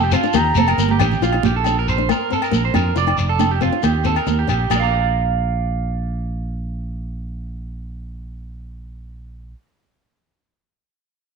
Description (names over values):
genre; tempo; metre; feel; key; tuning
highlife guitar band; 137 BPM; 4/4; straight; Bb major; A4 = 440 Hz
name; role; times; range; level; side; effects
bright wooden flute; melody; 0.0-1.0 s; G5 to Bb5; -23 LUFS; left 3 dB; none
flamenco guitar; accompaniment; 0.0-4.8 s; Bb3 to F4; -24 LUFS; left 10 dB; none
electric guitar at the edge of break-up; arpeggios; 0.0-9.7 s; F4 to Bb5; -22 LUFS; right 10 dB; spring reverb, slapback echo
fingered electric bass; bass; 0.0-9.5 s; F1 to F2; -22 LUFS; right 1 dB; none
shekere; percussion; 0.1-4.9 s; none; -26 LUFS; left 5 dB; none
agogo bells; percussion; 0.4-4.8 s; none; -26 LUFS; left 11 dB; none
congas; percussion; 0.4-4.9 s; none; -24 LUFS; right 11 dB; none
room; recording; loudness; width
moderate echo chamber reverb, RT60 1.3 s, studio reverb; 1960s-style stereo with parts hard left and right; -16 LUFS; side -5 dB against mid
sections
0.0-1.2 A section; 1.2-4.7 B section; 4.7-8.2 C section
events
drum fill 0.7-1.2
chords
0.3 Eb; 1.2 Bb; 3.0 F; 3.8 Eb; 4.7 Bb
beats
0.34 0.78 | 1.21 1.65 2.08 2.52 | 2.96 3.40 3.83 4.27 | 4.71 5.14 5.58 6.02 | 6.46 6.89 7.33 7.77